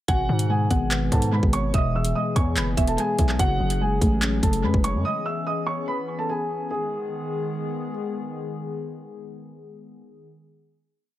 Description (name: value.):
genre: hip hop, drill.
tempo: 145 BPM.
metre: 4/4.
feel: half-time.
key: G# phrygian.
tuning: A4 = 441 Hz.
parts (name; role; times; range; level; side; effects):
dark concert grand piano; melody; 0.1-7.9 s; F#4 to E6; -28 LUFS; right 1 dB; analog delay.
mallet-like synth pluck; second line; 0.1-3.4 s; E5 to G#5; -34 LUFS; right 4 dB; chorus, analog delay.
muted felt-like synth keys; accompaniment; 0.1-5.1 s; B2 to B4; -27 LUFS; left 3 dB; chorus, analog delay.
hollow soft pad; sustained chords; 0.1-10.3 s; D#3 to G#4; -32 LUFS; left 3 dB; chorus.
distorted 808-style bass; bass; 0.1-5.0 s; E1 to G#2; -25 LUFS; equal; distortion.
drill drum kit; drums; 0.1-4.9 s; handclaps, hi-hat, kick drum; -23 LUFS; equal; none.
room: light reverb.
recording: echo-heavy mix.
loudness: -21 LUFS.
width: side -14 dB against mid.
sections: 0.1-6.7 hook; 6.7-10.0 final chord.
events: none.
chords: 0.1 G#m; 1.7 E; 3.4 F#madd9; 5.0 C#m7; 6.7 G#m.